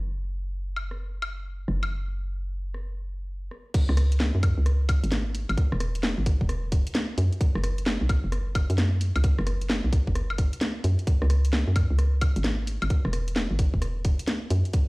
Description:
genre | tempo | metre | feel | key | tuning
UK garage, two-step garage | 131 BPM | 4/4 | swing 64% on 16ths | unclear | A4 = 439 Hz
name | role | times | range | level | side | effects
hollow knocking FM bass | bass | 0.0-14.6 s | E1 to F#2 | -25 LUFS | equal | tube saturation
garage drum kit | drums | 0.8-14.9 s | crash cymbal, hi-hat, rim click, snare drum, woodblock | -30 LUFS | equal | none
electronic kick drum | drums | 3.7-14.9 s | none | -23 LUFS | equal | none
room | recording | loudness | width
light reverb | played on a big sound system in a bare room, stone room reverb | -23 LUFS | side -25 dB against mid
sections
0.0-3.7 A section; 3.7-14.9 B section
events
drop 3.7-14.9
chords
none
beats
| 0.08 0.54 0.99 1.45 | 1.91 2.37 2.83 3.29 | 3.74 4.20 4.66 5.12 | 5.58 6.03 6.49 6.95 | 7.41 7.87 8.32 8.78 | 9.24 9.70 10.16 10.61 | 11.07 11.53 11.99 12.45 | 12.90 13.36 13.82 14.28 | 14.74

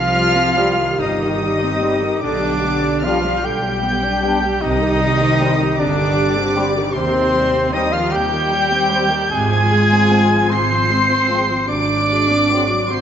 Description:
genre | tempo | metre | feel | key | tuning
classical, slow romantic movement for symphony orchestra | 50 BPM (dotted quarters) | 6/8 | rubato | C minor | A4 = 440 Hz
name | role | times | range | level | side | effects
muted chamber violin section | melody | 0.0-13.0 s | C6 to D7 | -22 LUFS | right 1 dB | none
hollow concert flute | second line | 0.0-13.0 s | C5 to D6 | -23 LUFS | left 1 dB | none
muted chamber violin section | second line | 0.0-13.0 s | C5 to D6 | -26 LUFS | left 6 dB | none
muted chamber viola section | accompaniment | 0.0-13.0 s | C3 to G4 | -23 LUFS | equal | none
clear trumpet | stabs | 0.0-13.0 s | C4 to D5 | -22 LUFS | equal | none
muted symphonic cello section | bass | 0.0-13.0 s | C3 to D4 | -22 LUFS | right 1 dB | none
muted symphonic double bass section | bass | 0.0-13.0 s | G1 to Eb2 | -23 LUFS | right 2 dB | none
warm French horn section | sustained chords | 0.6-12.6 s | F3 to D4 | -27 LUFS | left 4 dB | none
room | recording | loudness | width
moderate scoring stage reverb, RT60 2.1 s | nothing above 7.8 kHz | -14 LUFS | side -9 dB against mid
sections
0.0-13.0 A section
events
none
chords
0.0 Cm; 2.2 G/B; 4.6 Cm; 7.0 Cm/Eb; 9.3 Fm/Ab; 11.7 Ab7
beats
1.00 | 2.24 3.45 | 4.62 5.79 | 6.95 8.13 | 9.32 10.50 | 11.70 12.90

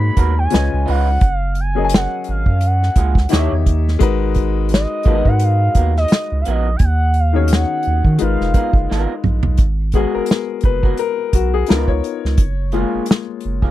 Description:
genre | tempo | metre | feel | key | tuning
R&B, neo-soul | 86 BPM | 4/4 | swing 55% on 16ths | G# dorian | A4 = 439 Hz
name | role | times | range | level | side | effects
expressive portamento lead | melody | 0.0-9.2 s | D#5 to B5 | -22 LUFS | right 1 dB | chorus
clear upright piano | accompaniment | 0.0-13.7 s | C#3 to G#5 | -22 LUFS | left 10 dB | none
round analog bass | bass | 0.0-13.7 s | E#1 to D#3 | -17 LUFS | right 1 dB | none
electric guitar through a small old amp | second line | 0.2-13.7 s | A#3 to C#5 | -25 LUFS | right 7 dB | none
unplugged drum kit | drums | 0.2-13.7 s | hi-hat, kick drum, snare drum, toms | -15 LUFS | equal | none
room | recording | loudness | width
little or no reverb | dry, close 1970s-style studio recording | -14 LUFS | side -14 dB against mid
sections
0.0-9.6 A section; 9.6-13.7 B section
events
drum fill 8.9-9.6; upright piano solo 9.6-13.7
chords
0.0 G#m9; 0.5 C#9; 1.2 F#maj9; 3.3 D#7b9; 4.0 G#m9; 6.8 D#m7; 8.2 G#m69; 9.6 G#m9; 11.7 C#9; 12.4 F#maj9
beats
0.52 | 1.22 1.92 2.61 3.31 | 4.01 4.71 5.40 6.10 | 6.80 7.50 8.19 8.89 | 9.59 10.29 10.98 11.68 | 12.38 13.08

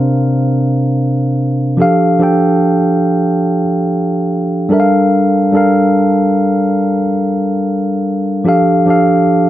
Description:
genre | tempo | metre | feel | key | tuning
R&B | free time | none | none | F major | A4 = 439 Hz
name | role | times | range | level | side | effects
mellow tine electric piano | solo | 0.0-9.5 s | C3 to G5 | -11 LUFS | equal | none
room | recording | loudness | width
light reverb, digital ambience | none | -11 LUFS | side -13 dB against mid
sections
0.0-9.5 A section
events
none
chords
0.0 C9sus4; 1.8 F69; 4.7 Gm9; 8.5 F69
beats
free time

